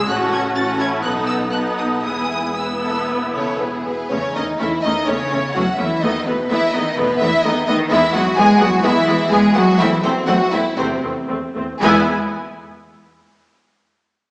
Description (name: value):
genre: quick classical-period movement for string orchestra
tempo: 111-130 BPM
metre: 4/4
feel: rubato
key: E major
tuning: A4 = 440 Hz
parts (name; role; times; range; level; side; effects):
- warm symphonic violin section; melody; 0.0-12.1 s; G#4 to A6; -22 LUFS; equal; none
- warm symphonic violin section; second line; 0.0-12.1 s; B3 to G#5; -21 LUFS; equal; none
- rich symphonic viola section; accompaniment; 0.0-12.1 s; G#3 to F#4; -20 LUFS; equal; none
- rich symphonic cello section; bass; 0.0-12.1 s; E2 to G#3; -22 LUFS; equal; none
- rich symphonic double bass section; bass; 0.0-12.1 s; E1 to E2; -28 LUFS; equal; none
room: wet recital hall reverb, RT60 1.8 s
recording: heard from further back in the room, small speaker sound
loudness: -15 LUFS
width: side -29 dB against mid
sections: 0.0-4.1 A section; 4.1-11.8 B section; 11.8-13.8 C section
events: none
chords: 0.1 F#m/A; 1.0 B7; 2.0 E; 4.1 A/E; 6.0 B7/E; 7.9 E; 9.8 Am/E; 11.8 E